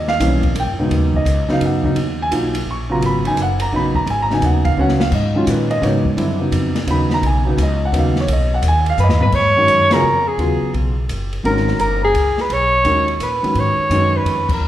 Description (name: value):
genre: modal jazz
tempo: 171 BPM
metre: 3/4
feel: swing 65% on 8ths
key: G# dorian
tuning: A4 = 440 Hz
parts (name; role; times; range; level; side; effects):
- dark grand piano; accompaniment; 0.0-14.5 s; Ab2 to C#6; -18 LUFS; right 1 dB; none
- upright bass; bass; 0.0-14.7 s; Eb1 to A#2; -19 LUFS; equal; none
- open jazz drum kit; drums; 0.1-14.5 s; crash cymbal, hi-hat, kick drum, ride cymbal, snare drum, toms; -25 LUFS; left 2 dB; none
- mellow soprano saxophone; melody; 9.0-14.7 s; G#4 to C#5; -16 LUFS; equal; none
room: wet recital hall reverb, RT60 1.6 s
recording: recorded in a church or concert hall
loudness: -14 LUFS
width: side -12 dB against mid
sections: 0.9-9.3 A section; 9.3-14.7 B section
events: drum fill 4.8-5.1, 9.0-9.3; band accent 9.9, 14.4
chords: 0.0 Eb7b9; 0.9 G#m11; 5.1 B; 9.3 G#m11; 13.6 B